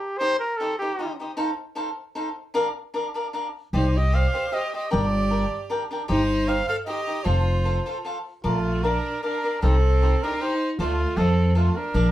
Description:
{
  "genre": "mexican folk, mariachi",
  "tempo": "154 BPM",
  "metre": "3/4",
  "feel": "swing 54% on 8ths",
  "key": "unclear",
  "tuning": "A4 = 443 Hz",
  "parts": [
    { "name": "warm trumpet", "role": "melody", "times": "0.0-1.2, 3.8-12.1 s", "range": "F4 to F5", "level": "-26 LUFS", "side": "equal", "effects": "none" },
    { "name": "cavaquinho", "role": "accompaniment", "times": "0.2-12.1 s", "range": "D4 to A5", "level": "-28 LUFS", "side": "left 1 dB", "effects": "none" },
    { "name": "upright bass", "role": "bass", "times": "3.7-12.1 s", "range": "F1 to F2", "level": "-21 LUFS", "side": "equal", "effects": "none" },
    { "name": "bright violin", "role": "second line", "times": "3.8-12.1 s", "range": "A3 to C5", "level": "-29 LUFS", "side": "right 2 dB", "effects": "none" }
  ],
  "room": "wet studio reverb, RT60 0.5 s",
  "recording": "heard from further back in the room",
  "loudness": "-22 LUFS",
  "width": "side -14 dB against mid",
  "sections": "0.0-12.1 A section",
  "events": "none",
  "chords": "0.2 Cm; 1.4 F7; 2.5 Bb; 3.7 Cmadd9; 4.9 Gm; 6.1 Cm/G; 7.3 F; 8.4 Bbmaj7; 9.6 Cm; 10.8 Dm7; 11.2 F7"
}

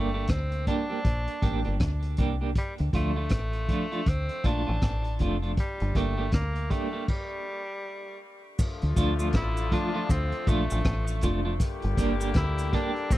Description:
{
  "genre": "roots reggae",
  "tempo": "80 BPM",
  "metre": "4/4",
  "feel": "swing 60% on 16ths",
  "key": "D minor",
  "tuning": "A4 = 440 Hz",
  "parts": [
    { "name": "bright tenor saxophone", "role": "melody", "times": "0.0-13.2 s", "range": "G3 to E4", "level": "-34 LUFS", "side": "equal", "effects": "tape echo" },
    { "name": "clean electric guitar", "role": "accompaniment", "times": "0.0-12.9 s", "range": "F3 to G4", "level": "-31 LUFS", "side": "right 2 dB", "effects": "tremolo, tape echo" },
    { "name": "deep dub fingered electric bass", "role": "bass", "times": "0.0-13.2 s", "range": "F1 to D2", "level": "-28 LUFS", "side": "equal", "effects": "none" },
    { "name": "crunchy breakbeat drum kit", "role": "drums", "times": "0.3-13.2 s", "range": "crash cymbal, hi-hat, kick drum, rim click", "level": "-27 LUFS", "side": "equal", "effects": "none" },
    { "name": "clear horn section", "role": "second line", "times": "8.6-13.2 s", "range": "D3 to G4", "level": "-35 LUFS", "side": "left 6 dB", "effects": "tape echo" },
    { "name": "cabasa", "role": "percussion", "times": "8.6-13.2 s", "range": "none", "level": "-44 LUFS", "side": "right 3 dB", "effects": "none" }
  ],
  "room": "little or no reverb",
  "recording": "dry, close 1970s-style studio recording",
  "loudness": "-25 LUFS",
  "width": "side -15 dB against mid",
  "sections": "0.0-8.6 A section; 8.6-13.2 B section",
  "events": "stop 7.1-8.6",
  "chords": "0.0 Gm; 2.6 Dm; 5.6 Gm; 8.6 Dm; 11.6 Gm"
}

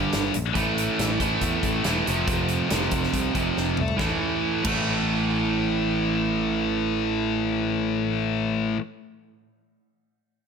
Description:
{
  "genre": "hard rock",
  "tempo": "139 BPM",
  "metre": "4/4",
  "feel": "straight",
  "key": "A minor",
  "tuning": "A4 = 440 Hz",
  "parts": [
    { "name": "cranked stack guitar", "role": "riff", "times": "0.0-8.8 s", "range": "F2 to A3", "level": "-26 LUFS", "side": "right 11 dB", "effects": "overdrive" },
    { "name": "high-gain distorted guitar", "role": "riff", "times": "0.0-8.8 s", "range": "F2 to A3", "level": "-26 LUFS", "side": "left 10 dB", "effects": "distortion" },
    { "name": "picked electric bass", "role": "bass", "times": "0.0-8.8 s", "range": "E1 to E2", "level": "-30 LUFS", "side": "left 1 dB", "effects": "none" },
    { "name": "big rock drum kit", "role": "drums", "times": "0.1-4.8 s", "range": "crash cymbal, hi-hat, kick drum, snare drum, toms", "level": "-30 LUFS", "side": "equal", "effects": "none" }
  ],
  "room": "light reverb, studio ambience",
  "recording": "none",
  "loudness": "-22 LUFS",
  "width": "side -6 dB against mid",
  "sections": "0.0-4.0 A section; 4.0-7.5 B section",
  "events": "drum fill 3.6-4.0",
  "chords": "0.0 Gm; 0.6 A5; 2.1 F5; 4.0 A5"
}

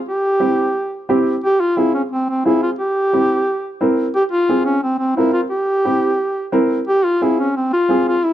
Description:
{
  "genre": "latin",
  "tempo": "176 BPM",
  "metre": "4/4",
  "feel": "straight",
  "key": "F harmonic minor",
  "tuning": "A4 = 441 Hz",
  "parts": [
    { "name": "mellow duduk", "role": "melody", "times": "0.1-8.3 s", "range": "C4 to G4", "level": "-16 LUFS", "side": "equal", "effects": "none" },
    { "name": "dark upright piano", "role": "accompaniment", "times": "0.4-8.1 s", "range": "C4 to Bb4", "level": "-18 LUFS", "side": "right 1 dB", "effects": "none" }
  ],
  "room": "studio reverb",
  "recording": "dry, close 1970s-style studio recording",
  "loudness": "-15 LUFS",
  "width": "side -12 dB against mid",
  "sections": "0.0-8.3 A section",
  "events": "none",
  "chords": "0.1 C; 1.4 Fm; 2.8 C7; 4.2 Fm; 5.5 C7; 6.9 Fm"
}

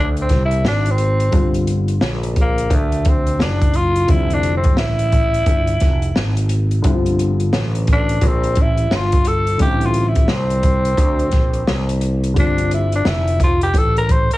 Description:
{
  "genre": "hip hop, jazz-hop",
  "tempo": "87 BPM",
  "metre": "4/4",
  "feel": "swing 62% on 16ths",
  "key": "G dorian",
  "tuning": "A4 = 441 Hz",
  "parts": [
    { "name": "growling tenor saxophone", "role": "melody", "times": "0.0-14.4 s", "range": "A3 to C5", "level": "-20 LUFS", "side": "equal", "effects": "none" },
    { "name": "dark baby grand piano", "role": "accompaniment", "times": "0.0-14.4 s", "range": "D3 to F4", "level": "-25 LUFS", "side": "left 2 dB", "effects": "none" },
    { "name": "fretless electric bass", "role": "bass", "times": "0.0-14.3 s", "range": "F1 to D2", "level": "-19 LUFS", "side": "equal", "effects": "none" },
    { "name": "open jazz drum kit", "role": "drums", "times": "0.2-14.4 s", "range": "hi-hat, kick drum, snare drum", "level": "-18 LUFS", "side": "equal", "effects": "vintage 12-bit sampler grit" }
  ],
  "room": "studio reverb",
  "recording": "heavily compressed radio sound, small room ambience",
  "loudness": "-14 LUFS",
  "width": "side -17 dB against mid",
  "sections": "0.0-14.4 A section",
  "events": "tenor saxophone solo 0.0-14.4",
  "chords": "0.0 D9sus4; 1.3 Gm7; 4.1 Fmaj9; 6.8 Gm9; 9.6 D9sus4/A; 12.4 Gsus2"
}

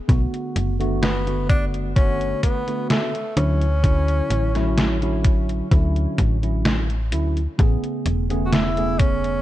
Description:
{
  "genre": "vaporwave",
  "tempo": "64 BPM",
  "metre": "4/4",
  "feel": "straight",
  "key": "unclear",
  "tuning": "A4 = 440 Hz",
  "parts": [
    { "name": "tine electric piano", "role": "accompaniment", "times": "0.1-9.4 s", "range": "C#3 to G#4", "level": "-25 LUFS", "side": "right 1 dB", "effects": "lush chorus, vintage 12-bit sampler grit, analog delay" },
    { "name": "slap-like FM bass", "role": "bass", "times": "0.1-9.4 s", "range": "E1 to D2", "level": "-22 LUFS", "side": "equal", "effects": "none" },
    { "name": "detuned 8-bit digital drum machine", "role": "drums", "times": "0.1-9.4 s", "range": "hi-hat, snare drum", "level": "-24 LUFS", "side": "equal", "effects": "overdrive, vintage 12-bit sampler grit, gated reverb" },
    { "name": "electronic kick drum", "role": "drums", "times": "0.1-9.2 s", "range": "none", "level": "-18 LUFS", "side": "equal", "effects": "overdrive, vintage 12-bit sampler grit" },
    { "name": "breathy tenor saxophone", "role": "melody", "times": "1.0-9.4 s", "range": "A3 to F#4", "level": "-27 LUFS", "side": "equal", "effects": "tape echo" }
  ],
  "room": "little or no reverb",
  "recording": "cassette tape",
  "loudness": "-18 LUFS",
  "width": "side -14 dB against mid",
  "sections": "0.0-9.4 A section",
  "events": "none",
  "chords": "0.1 Bm7; 3.4 Dmaj9; 7.6 Amaj9"
}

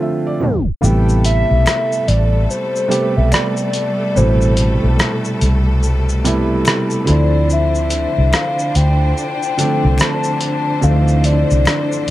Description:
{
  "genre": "lo-fi hip hop",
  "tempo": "72 BPM",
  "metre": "4/4",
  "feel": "swing 62% on 16ths",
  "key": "A minor",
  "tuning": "A4 = 440 Hz",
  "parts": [
    { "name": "felt-muted upright piano", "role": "accompaniment", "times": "0.0-12.1 s", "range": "B2 to A5", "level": "-19 LUFS", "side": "right 2 dB", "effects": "cassette tape" },
    { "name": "hollow clarinet-like synth lead", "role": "melody", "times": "0.4-12.1 s", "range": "C5 to A5", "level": "-20 LUFS", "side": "left 1 dB", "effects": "chorus, phaser" },
    { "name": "bright studio string section", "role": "sustained chords", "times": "0.8-12.1 s", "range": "D3 to C5", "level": "-24 LUFS", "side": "left 1 dB", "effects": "none" },
    { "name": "vintage muted fingered electric bass", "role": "bass", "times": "0.8-11.6 s", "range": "A1 to D2", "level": "-14 LUFS", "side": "equal", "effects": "none" },
    { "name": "dusty soul sampler-style drum kit", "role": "drums", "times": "0.8-12.1 s", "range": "hi-hat, rim click, shaker", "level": "-20 LUFS", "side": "equal", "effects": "none" },
    { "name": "finger snaps", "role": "percussion", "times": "1.7-11.9 s", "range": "none", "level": "-31 LUFS", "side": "left 3 dB", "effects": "none" }
  ],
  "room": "studio reverb",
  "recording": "cassette tape, tape stop",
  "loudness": "-13 LUFS",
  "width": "side -15 dB against mid",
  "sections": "0.8-12.1 A section",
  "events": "tape stop 0.4-0.8; kick muted 0.8-12.1",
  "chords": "0.0 Dm9; 0.8 Am9; 7.1 Dm9"
}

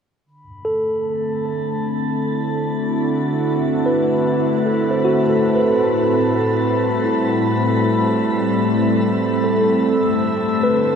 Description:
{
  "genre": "ambient",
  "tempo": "75 BPM",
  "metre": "3/4",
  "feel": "straight",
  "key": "unclear",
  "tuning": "A4 = 441 Hz",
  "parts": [
    { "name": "warbly tape-like pad", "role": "sustained chords", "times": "0.8-11.0 s", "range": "A2 to F#4", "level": "-18 LUFS", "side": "equal", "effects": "chorus, built-in reverb" },
    { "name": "glass harmonica", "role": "texture", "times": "0.3-11.0 s", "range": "B5 to E6", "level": "-28 LUFS", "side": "left 2 dB", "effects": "none" },
    { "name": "mellow tine electric piano", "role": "arpeggios", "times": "0.6-11.0 s", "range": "E4 to C5", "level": "-20 LUFS", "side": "right 1 dB", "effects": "ping-pong delay" }
  ],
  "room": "wet shimmer reverb, RT60 7.6 s",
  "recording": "none",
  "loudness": "-16 LUFS",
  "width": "side -7 dB against mid",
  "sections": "0.2-11.0 A section",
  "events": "fade-in on glass harmonica 0.2-11.0",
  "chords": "0.2 D9; 5.0 Am9; 9.8 D7sus2"
}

